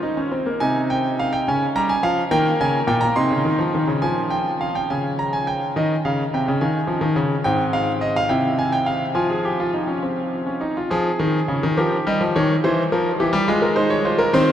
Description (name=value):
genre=classical, baroque-style 3-part fugue for grand piano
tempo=70 BPM (dotted quarters)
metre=6/8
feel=straight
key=Ab major, F minor from 7.5 s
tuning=A4 = 441 Hz
part: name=bright concert grand piano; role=solo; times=0.0-14.5 s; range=Ab2 to C6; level=-18 LUFS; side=equal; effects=none
room=wet huge ambient reverb, RT60 7.6 s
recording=in a vast, echoing space, faint mains hum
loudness=-18 LUFS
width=side -10 dB against mid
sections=0.6-4.0 A section; 4.0-10.9 B section; 10.9-14.5 C section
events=none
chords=0.0 Ab (rootless); 0.6 Ab/C; 1.5 Bbm7/Db; 2.3 Eb7; 3.2 Cmadd11; 4.0 Fm; 4.9 Bbm/Db; 5.8 Eb7; 6.6 Ab5/Eb; 7.5 Fm/Ab; 8.3 C; 9.2 Fm; 11.8 Gm7b5/F; 12.6 C7/E; 13.5 Fm/Ab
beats=| 0.62 1.47 | 2.31 3.17 | 4.04 4.91 | 5.76 6.61 | 7.45 8.30 | 9.17 10.04 | 10.92 11.78 | 12.63 13.48 | 14.33